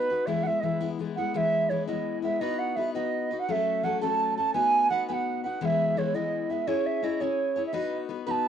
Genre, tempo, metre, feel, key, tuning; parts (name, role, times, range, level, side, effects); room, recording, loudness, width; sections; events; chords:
celtic folk, Celtic jig; 113 BPM (dotted quarters); 6/8; straight; E major; A4 = 440 Hz
bright wooden flute; melody; 0.0-8.5 s; B4 to B5; -26 LUFS; right 5 dB
picked steel-string acoustic guitar; accompaniment; 0.0-8.5 s; E3 to C#5; -30 LUFS; left 8 dB; cassette tape
moderate booth ambience, RT60 0.2 s; home recording on cassette; -25 LUFS; side -8 dB against mid
0.0-1.3 A section; 1.3-8.5 B section
0.3 E; 2.4 B; 3.5 F#m; 4.5 B; 5.6 E; 6.7 C#m; 7.7 B